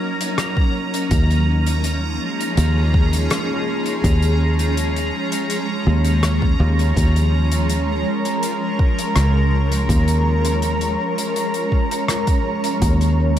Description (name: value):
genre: ambient dub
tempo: 82 BPM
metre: 4/4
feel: straight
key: unclear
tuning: A4 = 440 Hz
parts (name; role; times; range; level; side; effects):
- granular cloud pad; sustained chords; 0.0-13.4 s; Eb3 to Db5; -22 LUFS; equal; built-in reverb
- bubbling stepped-filter texture; texture; 0.0-13.4 s; Bb5; -27 LUFS; right 2 dB; chorus, built-in reverb
- soft-mallet drum kit; drums; 0.2-13.4 s; hi-hat, rim click; -28 LUFS; left 2 dB; none
- electronic kick drum; drums; 0.6-13.0 s; none; -18 LUFS; equal; none
- fingered electric bass; bass; 1.1-13.4 s; Db2 to Eb2; -17 LUFS; equal; none
room: light reverb, small room reverb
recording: none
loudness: -16 LUFS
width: side -11 dB against mid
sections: 0.0-13.4 A section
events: none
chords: 0.0 Ebm7; 1.1 Db/Eb; 12.8 Ebm7